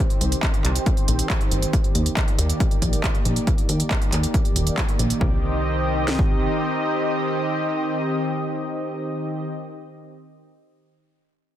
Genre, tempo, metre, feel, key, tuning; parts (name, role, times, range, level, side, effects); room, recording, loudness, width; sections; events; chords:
uplifting trance; 138 BPM; 4/4; straight; C minor; A4 = 440 Hz
lush unison pad; sustained chords; 0.1-9.4 s; Eb3 to Eb5; -25 LUFS; equal; chorus, sidechain pumping
techno drum kit; drums; 0.1-5.2 s; handclaps, hi-hat; -28 LUFS; right 1 dB; sidechain pumping on hats
plucky analog bass; bass; 0.2-6.5 s; Eb1 to Eb2; -23 LUFS; equal; sidechain pumping
techno drum kit; drums; 0.4-6.3 s; kick drum, snare drum; -21 LUFS; equal
light reverb; dense, heavily limited modern master; -20 LUFS; side -11 dB against mid
0.0-5.2 A section; 5.2-8.7 B section
filter sweep on analog synth pad 0.0-5.2
0.0 Cm; 1.7 Ebmaj7; 5.2 Cm